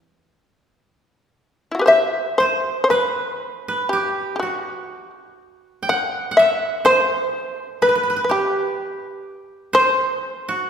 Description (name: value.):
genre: japanese traditional, Japanese chamber music.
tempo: 57-63 BPM.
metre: 4/4.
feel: rubato.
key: E hirajoshi.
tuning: A4 = 440 Hz.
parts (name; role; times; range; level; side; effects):
shamisen; melody; 0.0-10.7 s; E4 to F#5; -18 LUFS; left 1 dB; none.
koto; second line; 0.0-10.7 s; E3 to G5; -23 LUFS; right 3 dB; none.
room: wet scoring stage reverb, RT60 2.0 s.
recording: recorded in a church or concert hall.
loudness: -17 LUFS.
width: side -8 dB against mid.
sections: 0.0-10.7 A section.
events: none.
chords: none.